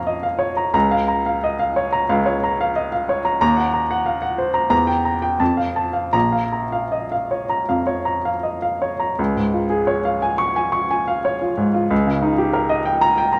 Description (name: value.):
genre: classical, romantic character piece for solo piano.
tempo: 76-97 BPM.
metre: 4/4.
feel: rubato.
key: Bb minor, Db major from 9.2 s.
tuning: A4 = 439 Hz.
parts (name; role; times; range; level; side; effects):
bright upright piano; solo; 0.0-13.4 s; Bb1 to Db6; -20 LUFS; equal; none.
room: moderate recital hall reverb, RT60 1.8 s.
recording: none.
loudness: -20 LUFS.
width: mono.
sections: 0.0-9.2 A section; 9.2-13.4 B section.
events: none.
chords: 0.0 Bbm; 0.7 Bbm/Db; 3.4 Cm7b5/Eb; 4.7 Edim; 5.4 F; 6.1 Bbm; 9.2 Db; 11.9 Eb7/Db.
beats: 0.06 | 0.74 1.43 2.10 2.76 | 3.41 4.06 4.72 5.40 | 6.14 6.92 7.70 8.44 | 9.18 9.88 10.57 11.25 | 11.91 12.55 13.18.